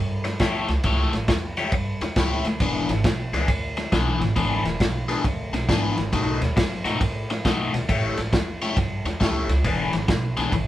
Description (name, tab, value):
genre	electric blues shuffle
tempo	136 BPM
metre	4/4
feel	swing 65% on 8ths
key	E mixolydian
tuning	A4 = 440 Hz
part	upright bass	bass	0.0-10.7 s	E1 to A2	-27 LUFS	right 1 dB	none
part	cranked stack guitar	riff	0.2-10.6 s	B2 to C#5	-25 LUFS	left 3 dB	overdrive, phaser
part	crunchy breakbeat drum kit	drums	0.2-10.7 s	kick drum, ride cymbal, snare drum	-24 LUFS	equal	none
room	moderate studio ambience, RT60 0.5 s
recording	band playing live in one room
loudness	-21 LUFS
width	side -14 dB against mid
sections	0.0-10.7 A section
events	none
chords	0.0 A7; 2.6 E7; 6.1 B7; 7.9 A7; 9.6 E7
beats	0.40 | 0.84 1.28 1.72 2.16 | 2.60 3.05 3.49 3.93 | 4.37 4.81 5.25 5.69 | 6.13 6.57 7.01 7.45 | 7.89 8.33 8.77 9.21 | 9.65 10.09 10.53